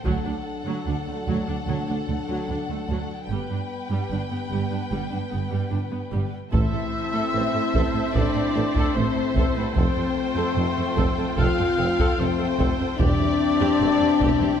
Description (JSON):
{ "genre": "cinematic, epic orchestral film score", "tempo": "74 BPM", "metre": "4/4", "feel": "straight", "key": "A minor", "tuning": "A4 = 440 Hz", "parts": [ { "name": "mellow French horn section", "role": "sustained chords", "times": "0.0-14.6 s", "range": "F#3 to F4", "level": "-26 LUFS", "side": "left 6 dB", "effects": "none" }, { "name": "warm symphonic violin section", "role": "melody", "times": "0.1-14.6 s", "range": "E5 to G5", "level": "-36 LUFS", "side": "left 4 dB", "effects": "none" }, { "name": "warm symphonic violin section", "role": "second line", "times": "0.1-14.6 s", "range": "A4 to F5", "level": "-34 LUFS", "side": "left 2 dB", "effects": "none" }, { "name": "warm symphonic viola section", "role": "accompaniment", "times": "0.1-14.6 s", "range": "F#3 to C5", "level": "-32 LUFS", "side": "right 2 dB", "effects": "none" }, { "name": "warm symphonic cello section", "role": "bass", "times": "0.1-14.5 s", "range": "D2 to A2", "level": "-30 LUFS", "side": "right 3 dB", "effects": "none" }, { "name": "warm symphonic double bass section", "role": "bass", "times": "0.1-14.3 s", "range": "E1 to D2", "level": "-30 LUFS", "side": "right 4 dB", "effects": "none" }, { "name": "solo taiko drums", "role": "drums", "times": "0.1-1.6, 6.5-14.6 s", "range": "none", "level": "-26 LUFS", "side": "equal", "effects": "none" }, { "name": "concert flute", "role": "second line", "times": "6.5-14.3 s", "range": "B5 to F6", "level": "-32 LUFS", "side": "left 3 dB", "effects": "none" }, { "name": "warm symphonic string section", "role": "sustained chords", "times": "6.5-14.6 s", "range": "G3 to A5", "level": "-34 LUFS", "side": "equal", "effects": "none" }, { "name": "warm trombone section", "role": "sustained chords", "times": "6.5-14.6 s", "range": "G3 to C4", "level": "-32 LUFS", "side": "right 6 dB", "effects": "none" }, { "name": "clear tuba", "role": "bass", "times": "6.5-14.3 s", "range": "E1 to A1", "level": "-32 LUFS", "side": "right 4 dB", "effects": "none" }, { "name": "timpani", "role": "percussion", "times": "6.5-7.7, 13.0-14.2 s", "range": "E2 to A2", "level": "-30 LUFS", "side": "equal", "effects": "none" } ], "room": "moderate scoring stage reverb, RT60 1.8 s", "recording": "none", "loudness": "-21 LUFS", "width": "side -8 dB against mid", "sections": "0.0-6.5 A section; 6.5-14.6 B section", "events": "build-up 0.0-6.5", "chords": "0.1 D; 3.3 G; 6.5 Am; 9.8 Fadd9; 13.0 C/E", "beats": "| 0.06 0.87 1.68 2.49 | 3.29 4.11 4.91 5.72 | 6.53 7.34 8.15 8.96 | 9.76 10.57 11.38 12.19 | 12.99 13.80" }